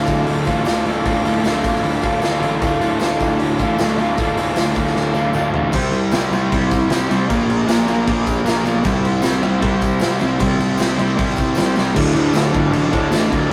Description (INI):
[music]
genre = garage rock duo or trio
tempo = 154 BPM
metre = 4/4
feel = straight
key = D minor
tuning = A4 = 438 Hz
[part]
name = overdriven combo organ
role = sustained chords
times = 0.0-13.5 s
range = E4 to Bb5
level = -29 LUFS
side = equal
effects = none
[part]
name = raw garage guitar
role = riff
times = 0.0-13.5 s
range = D2 to F4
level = -19 LUFS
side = equal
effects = overdrive
[part]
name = fuzz picked electric bass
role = bass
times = 0.0-13.5 s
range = D1 to D2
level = -28 LUFS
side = equal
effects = overdrive
[part]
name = raw garage drum kit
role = drums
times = 0.1-13.4 s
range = crash cymbal, hi-hat, kick drum, snare drum, toms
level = -24 LUFS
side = equal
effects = none
[part]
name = tambourine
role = percussion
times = 0.1-13.2 s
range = none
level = -43 LUFS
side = equal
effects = none
[sound]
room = light reverb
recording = rough rehearsal-room recording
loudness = -18 LUFS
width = mono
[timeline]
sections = 0.0-5.7 A section; 5.7-12.0 B section; 12.0-13.5 C section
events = drum fill 5.0-5.7, 11.8; transistor combo organ fill 11.2-12.0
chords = 0.0 Dm; 5.7 C; 7.3 Bb; 8.8 C; 12.0 Dm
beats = 0.28 0.67 | 1.06 1.45 1.84 2.23 | 2.62 3.01 3.40 3.79 | 4.18 4.57 4.96 5.35 | 5.74 6.13 6.52 6.91 | 7.29 7.68 8.07 8.46 | 8.85 9.24 9.63 10.02 | 10.40 10.79 11.18 11.57 | 11.96 12.35 12.73 13.12 | 13.51